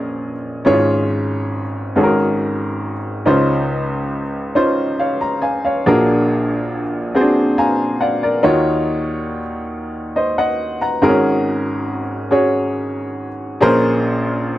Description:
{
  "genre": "gospel",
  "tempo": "46 BPM (dotted quarters)",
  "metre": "6/8",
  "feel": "straight",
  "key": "Db major",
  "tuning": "A4 = 439 Hz",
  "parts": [
    { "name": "clear baby grand piano", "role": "solo", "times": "0.0-14.6 s", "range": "Ab1 to Bb5", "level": "-15 LUFS", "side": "equal", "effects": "none" }
  ],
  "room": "light reverb",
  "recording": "dry, close 1970s-style studio recording",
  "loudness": "-15 LUFS",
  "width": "side -14 dB against mid",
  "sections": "0.0-13.6 A section",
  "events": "grand piano fill 7.2-8.4",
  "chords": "0.0 Bbm9; 0.7 Db/Ab; 2.0 Ab9sus4; 3.3 Dbmaj9; 5.9 Bb7b13; 8.4 Ebm9; 11.0 Ab9sus4; 13.6 Bbm9",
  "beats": "| 0.66 1.96 | 3.26 4.56 | 5.85 7.15 | 8.45 9.74 | 11.03 12.33 | 13.62"
}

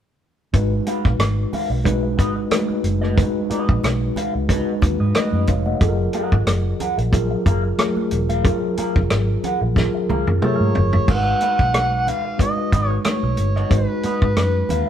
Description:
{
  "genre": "lush 1970s-style soul",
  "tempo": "91 BPM",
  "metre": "4/4",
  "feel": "swing 54% on 16ths",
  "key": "G# dorian",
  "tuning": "A4 = 437 Hz",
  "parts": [
    { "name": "mellow tine electric piano", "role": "accompaniment", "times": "0.5-14.9 s", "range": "F#3 to F#5", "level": "-23 LUFS", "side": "equal", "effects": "medium stereo tremolo" },
    { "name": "vintage muted fingered electric bass", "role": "bass", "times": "0.5-14.8 s", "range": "E1 to G#2", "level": "-21 LUFS", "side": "equal", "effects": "none" },
    { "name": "warm soul drum kit", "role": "drums", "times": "0.5-14.9 s", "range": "crash cymbal, hi-hat, kick drum, rim click, snare drum, toms", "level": "-20 LUFS", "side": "equal", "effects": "none" },
    { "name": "electric guitar through a small old amp", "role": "riff", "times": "0.9-14.9 s", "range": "F#4 to F#5", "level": "-28 LUFS", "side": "right 1 dB", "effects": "wah" },
    { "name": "congas", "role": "percussion", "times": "0.9-14.9 s", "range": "none", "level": "-29 LUFS", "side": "equal", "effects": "none" },
    { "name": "overdriven harmonica", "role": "melody", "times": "10.4-14.9 s", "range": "B4 to F#5", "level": "-22 LUFS", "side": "right 1 dB", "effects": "none" }
  ],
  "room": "light reverb",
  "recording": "band playing live in one room",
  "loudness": "-17 LUFS",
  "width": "side -10 dB against mid",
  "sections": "0.5-11.1 A section; 11.1-14.9 B section",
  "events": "drum fill 9.8-11.1",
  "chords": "0.5 G#m7; 5.8 F#maj9; 11.1 G#m7",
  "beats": "| 0.54 1.20 1.86 2.52 | 3.18 3.83 4.49 5.15 | 5.81 6.47 7.13 7.79 | 8.45 9.10 9.76 10.42 | 11.08 11.73 12.39 13.05 | 13.71 14.37"
}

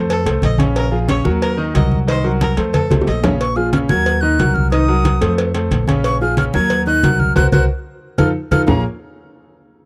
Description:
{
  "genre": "latin, salsa",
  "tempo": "182 BPM",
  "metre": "4/4",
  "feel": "straight",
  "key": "Bb minor",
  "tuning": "A4 = 442 Hz",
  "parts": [
    { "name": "clear concert grand piano", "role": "accompaniment", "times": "0.0-8.8 s", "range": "Db3 to F5", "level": "-22 LUFS", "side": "equal", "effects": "none" },
    { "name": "upright bass", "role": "bass", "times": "0.0-8.8 s", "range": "Bb1 to F2", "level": "-21 LUFS", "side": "equal", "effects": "none" },
    { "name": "clear erhu", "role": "second line", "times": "0.1-3.3 s", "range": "A4 to Eb5", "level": "-28 LUFS", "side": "equal", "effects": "none" },
    { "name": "congas", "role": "percussion", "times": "0.1-8.8 s", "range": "none", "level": "-22 LUFS", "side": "equal", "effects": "none" },
    { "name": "cowbell and bongos", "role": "percussion", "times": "0.1-8.8 s", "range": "none", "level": "-26 LUFS", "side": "equal", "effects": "none" },
    { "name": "breathy bright jazz flute", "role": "melody", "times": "3.4-8.8 s", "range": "Bb5 to Ab6", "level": "-22 LUFS", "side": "equal", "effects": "none" }
  ],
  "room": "little or no reverb",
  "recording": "dry, close 1970s-style studio recording",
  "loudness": "-16 LUFS",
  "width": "mono",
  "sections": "0.0-3.4 A section; 3.4-8.7 B section; 8.7-9.9 C section",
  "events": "drum fill 2.7-3.4, 8.0-8.7; band accent 7.4-8.7",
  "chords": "0.1 F7; 0.8 Bbm7; 1.4 Ebm; 2.1 Cm7b5; 2.7 F7; 3.4 Bbm7; 4.1 Ebm; 4.7 Cm7b5; 5.4 F; 6.0 Bbm7; 6.7 Ebm; 7.4 Gb; 8.0 F7; 8.7 Bbm7",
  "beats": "0.09 0.42 | 0.76 1.09 1.42 1.75 | 2.08 2.41 2.74 3.07 | 3.40 3.73 4.06 4.39 | 4.72 5.05 5.38 5.71 | 6.04 6.38 6.71 7.04 | 7.36 7.69 8.02 8.35 | 8.68"
}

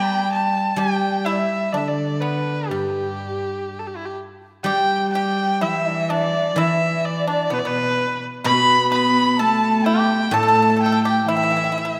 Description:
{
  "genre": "chinese traditional, Chinese chamber ensemble",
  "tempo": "63 BPM",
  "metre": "4/4",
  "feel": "rubato",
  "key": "G gong mode",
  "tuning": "A4 = 440 Hz",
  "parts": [
    { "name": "rich erhu", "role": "melody", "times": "0.0-12.0 s", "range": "E4 to B5", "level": "-24 LUFS", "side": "equal", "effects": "none" },
    { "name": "dark cello", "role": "second line", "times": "0.0-11.9 s", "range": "G2 to B3", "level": "-26 LUFS", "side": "equal", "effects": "none" },
    { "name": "mellow xiao", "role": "second line", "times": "0.0-12.0 s", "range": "G4 to B5", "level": "-29 LUFS", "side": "equal", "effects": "none" },
    { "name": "pipa", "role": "second line", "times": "0.0-11.9 s", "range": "G3 to B4", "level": "-29 LUFS", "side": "equal", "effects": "none" },
    { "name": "guzheng", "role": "accompaniment", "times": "0.8-12.0 s", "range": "A2 to G3", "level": "-30 LUFS", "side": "equal", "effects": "none" }
  ],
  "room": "wet concert hall reverb, RT60 2.0 s",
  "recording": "none",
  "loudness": "-20 LUFS",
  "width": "mono",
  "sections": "0.0-4.7 A section; 4.7-12.0 B section",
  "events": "none",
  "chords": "none",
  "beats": "| 0.78 1.73 2.69 3.68 | 4.67 5.63 6.58 7.53 | 8.46 9.40 10.34 11.28"
}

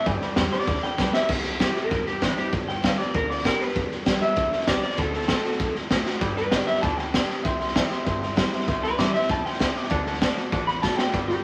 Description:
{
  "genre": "rockabilly",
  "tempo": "195 BPM",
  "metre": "4/4",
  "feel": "straight",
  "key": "G major",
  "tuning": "A4 = 436 Hz",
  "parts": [
    { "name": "electric guitar through a small old amp", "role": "melody", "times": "0.0-11.4 s", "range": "D4 to B5", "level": "-29 LUFS", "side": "equal", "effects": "none" },
    { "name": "clear upright piano", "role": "accompaniment", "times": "0.0-1.2, 6.2-11.4 s", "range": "D5 to D6", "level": "-35 LUFS", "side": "equal", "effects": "none" },
    { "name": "picked steel-string acoustic guitar", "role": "accompaniment", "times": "0.0-11.4 s", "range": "G2 to G4", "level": "-33 LUFS", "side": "equal", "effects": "none" },
    { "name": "upright bass", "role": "bass", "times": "0.1-11.4 s", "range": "G1 to G2", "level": "-37 LUFS", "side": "equal", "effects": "none" },
    { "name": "raw garage drum kit", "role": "drums", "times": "0.1-11.3 s", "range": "crash cymbal, hi-hat, kick drum, snare drum", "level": "-27 LUFS", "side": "equal", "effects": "none" }
  ],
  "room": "wet club ambience, RT60 0.5 s",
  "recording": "vinyl crackle",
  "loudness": "-24 LUFS",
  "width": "mono",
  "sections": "0.0-1.3 A section; 1.3-11.1 B section",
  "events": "clean electric guitar solo 0.0-1.3; drum fill 1.0-1.3, 6.1, 10.8-11.1",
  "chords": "0.1 G; 1.3 C; 2.5 G; 5.0 D7; 6.2 G; 7.4 C; 9.9 D7",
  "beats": "| 0.07 0.37 0.68 0.99 | 1.30 1.60 1.91 2.22 | 2.53 2.83 3.14 3.45 | 3.76 4.06 4.37 4.68 | 4.99 5.29 5.60 5.91 | 6.22 6.52 6.83 7.14 | 7.45 7.75 8.06 8.37 | 8.68 8.98 9.29 9.60 | 9.91 10.21 10.52 10.83 | 11.14"
}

